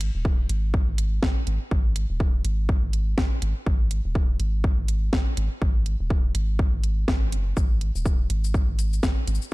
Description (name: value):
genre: minimal techno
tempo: 123 BPM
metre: 4/4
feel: swing 59% on 16ths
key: unclear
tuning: A4 = 441 Hz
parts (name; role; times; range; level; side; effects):
- punchy sub bass; bass; 0.0-9.4 s; D#1 to G#1; -25 LUFS; equal; sidechain pumping
- house drum kit; drums; 0.0-9.5 s; hi-hat, shaker, snare drum; -31 LUFS; equal; overdrive
- electronic kick drum; drums; 0.2-9.1 s; none; -23 LUFS; equal; overdrive
room: little or no reverb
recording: dark, warm production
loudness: -21 LUFS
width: side -21 dB against mid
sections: 0.0-9.5 A section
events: none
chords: none